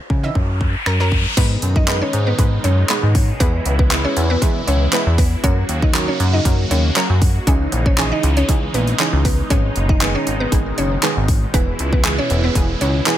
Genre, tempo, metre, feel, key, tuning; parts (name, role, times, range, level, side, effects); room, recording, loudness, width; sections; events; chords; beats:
dance-pop; 118 BPM; 4/4; straight; G# minor; A4 = 439 Hz
riser; sound effects; 0.1-1.4 s; -25 LUFS; left 2 dB
chorused synth bass; bass; 0.1-13.0 s; E1 to C#3; -18 LUFS; equal; sidechain pumping
pop drum kit; drums; 0.1-13.2 s; crash cymbal, finger snaps, handclaps, hi-hat, kick drum; -18 LUFS; equal
analog pluck; accompaniment; 0.2-13.2 s; D#3 to E5; -24 LUFS; right 3 dB; chorus, sidechain pumping
mallet-like synth pluck; melody; 1.4-12.9 s; B3 to D#5; -24 LUFS; equal; chorus, sidechain pumping, ping-pong delay
filtered supersaw swell; sustained chords; 1.4-13.2 s; B2 to F#4; -25 LUFS; right 1 dB; phaser, sidechain pumping
digital ambience; -14 LUFS; side -12 dB against mid
0.0-1.4 A section; 1.4-13.2 B section
riser 0.1-1.4; drop 1.4-13.2
0.4 F#; 1.4 G#m; 3.4 E; 5.4 F#; 7.5 C#madd9; 9.5 G#m; 11.5 E
0.35 0.86 | 1.37 1.88 2.39 2.90 | 3.40 3.91 4.42 4.93 | 5.44 5.95 6.46 6.96 | 7.47 7.98 8.49 9.00 | 9.51 10.01 10.52 11.03 | 11.54 12.05 12.56 13.06